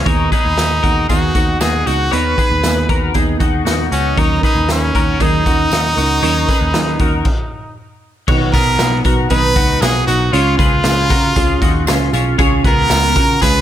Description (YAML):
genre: jangly indie pop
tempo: 117 BPM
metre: 4/4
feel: straight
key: unclear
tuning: A4 = 440 Hz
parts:
  - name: brilliant trumpet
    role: melody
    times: 0.0-13.6 s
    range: Db4 to Cb5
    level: -17 LUFS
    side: right 1 dB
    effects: none
  - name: twelve-string electric guitar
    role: arpeggios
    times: 0.0-13.6 s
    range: B3 to Db5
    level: -20 LUFS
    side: left 4 dB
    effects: analog chorus
  - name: fingerpicked plugged-in steel-string acoustic guitar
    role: accompaniment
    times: 0.1-13.6 s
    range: B2 to B4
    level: -21 LUFS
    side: right 4 dB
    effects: none
  - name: vintage muted picked electric bass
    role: bass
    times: 0.1-13.6 s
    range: B1 to Db3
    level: -18 LUFS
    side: equal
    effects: none
  - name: raw garage drum kit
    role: drums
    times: 0.1-13.5 s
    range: crash cymbal, hi-hat, kick drum, snare drum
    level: -17 LUFS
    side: equal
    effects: none
  - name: tambourine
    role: percussion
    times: 0.3-13.5 s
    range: none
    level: -31 LUFS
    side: right 5 dB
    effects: none
room: light reverb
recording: none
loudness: -12 LUFS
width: side -11 dB against mid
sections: 0.0-8.3 A section; 8.3-13.6 B section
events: stop 7.3-8.3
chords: 0.1 Abmadd9; 8.3 B; 10.3 Db